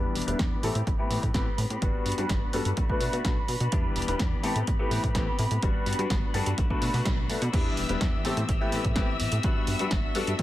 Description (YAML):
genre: filtered disco house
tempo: 126 BPM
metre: 4/4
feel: straight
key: E minor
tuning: A4 = 439 Hz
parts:
  - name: clear grand piano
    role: accompaniment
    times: 0.0-10.3 s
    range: G3 to B4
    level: -32 LUFS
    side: left 2 dB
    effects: phaser, sidechain pumping, low-pass filter
  - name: muted symphonic violin section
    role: sustained chords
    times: 0.0-10.4 s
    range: B4 to E6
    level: -35 LUFS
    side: equal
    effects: vintage 12-bit sampler grit, sidechain pumping, low-pass filter
  - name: clean electric guitar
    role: riff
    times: 0.0-10.4 s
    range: E3 to G4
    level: -36 LUFS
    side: left 5 dB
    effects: sidechain pumping, low-pass filter
  - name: plucky analog bass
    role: bass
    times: 0.0-10.4 s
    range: E1 to B2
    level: -30 LUFS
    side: equal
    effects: sidechain pumping, low-pass filter
  - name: punchy analog drum machine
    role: drums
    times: 0.2-10.4 s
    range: crash cymbal, hi-hat, snare drum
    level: -34 LUFS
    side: right 1 dB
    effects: sidechain pumping on hats, sidechain pumping on cymbals
  - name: electronic kick drum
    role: drums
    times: 0.4-10.4 s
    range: none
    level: -28 LUFS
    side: equal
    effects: none
room: little or no reverb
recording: none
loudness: -24 LUFS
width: side -14 dB against mid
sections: 0.0-7.5 A section; 7.5-10.4 B section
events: filter sweep 0.0-7.5; band accent 7.1; drop 7.5-10.4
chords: 0.0 Em7; 0.6 Am9; 1.8 Gmaj7; 2.8 Bm7; 3.7 Em7; 4.4 Am9; 5.6 Gmaj7; 6.6 Bm7; 7.5 Em7; 8.2 Am9; 9.4 Gmaj7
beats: 0.39 0.87 1.35 | 1.82 2.30 2.77 3.25 | 3.73 4.20 4.68 5.16 | 5.63 6.11 6.58 7.06 | 7.54 8.01 8.49 8.96 | 9.44 9.92 10.39